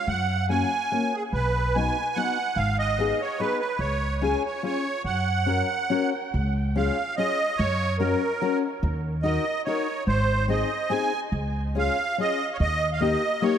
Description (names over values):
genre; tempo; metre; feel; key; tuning
alpine folk, alpine dance band; 144 BPM; 3/4; swing 53% on 8ths, rubato; F# major, Db major from 6.3 s; A4 = 440 Hz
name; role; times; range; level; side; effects
musette accordion; melody; 0.0-13.6 s; G#4 to G#5; -26 LUFS; right 3 dB; analog delay
upright bass; bass; 0.1-13.1 s; G#1 to F#2; -26 LUFS; equal; none
fingerpicked steel-string acoustic guitar; accompaniment; 0.5-13.6 s; A#3 to A#4; -28 LUFS; left 6 dB; wide subtle chorus
room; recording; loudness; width
wet plate reverb, RT60 2.5 s; dreamy mix soaked in reverb; -23 LUFS; side -9 dB against mid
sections
0.0-6.3 A section; 6.3-13.6 B section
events
none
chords
0.1 F#add9; 1.3 B; 2.6 G#m; 3.8 C#; 5.1 F#; 6.3 Db; 7.6 Gb; 8.8 Ebm; 10.1 Ab; 11.3 Db; 12.6 Eb